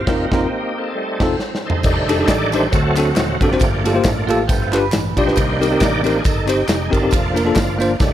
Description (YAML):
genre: uptempo gospel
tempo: 136 BPM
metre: 4/4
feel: swing 55% on 8ths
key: unclear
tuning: A4 = 438 Hz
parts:
  - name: bright tonewheel organ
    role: sustained chords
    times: 0.0-8.1 s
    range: Eb3 to D5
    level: -21 LUFS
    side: right 1 dB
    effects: fast rotary speaker, overdrive, chorus vibrato
  - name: fingered electric bass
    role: bass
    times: 0.0-8.1 s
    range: Eb1 to D2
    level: -24 LUFS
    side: equal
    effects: none
  - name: bell-like tine electric piano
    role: accompaniment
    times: 0.1-7.9 s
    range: G2 to D5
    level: -19 LUFS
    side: left 1 dB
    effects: medium stereo tremolo
  - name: modern studio drum kit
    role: drums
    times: 0.1-8.1 s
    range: crash cymbal, kick drum, ride cymbal, snare drum, toms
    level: -20 LUFS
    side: equal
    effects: none
  - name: tambourine and handclaps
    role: percussion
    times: 1.8-8.1 s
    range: none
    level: -31 LUFS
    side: left 1 dB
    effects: none
  - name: clean electric guitar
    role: second line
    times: 4.3-5.3 s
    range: F4 to B4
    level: -26 LUFS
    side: right 7 dB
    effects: phaser
room: light reverb, studio ambience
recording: none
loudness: -15 LUFS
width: side -11 dB against mid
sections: 0.0-1.8 A section; 1.8-8.1 B section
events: tonewheel organ solo 0.0-1.8, 1.8-8.1; band accent 0.1-1.8; drum fill 1.4-1.8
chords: 0.1 F7sus4; 1.0 F7; 1.8 F13; 2.7 D7; 3.6 Gm9; 4.5 G7; 5.4 Cm7; 7.1 Bb/F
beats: | 0.07 0.52 0.96 1.40 | 1.84 2.28 2.72 3.17 | 3.61 4.05 4.49 4.93 | 5.37 5.81 6.25 6.68 | 7.12 7.56 8.00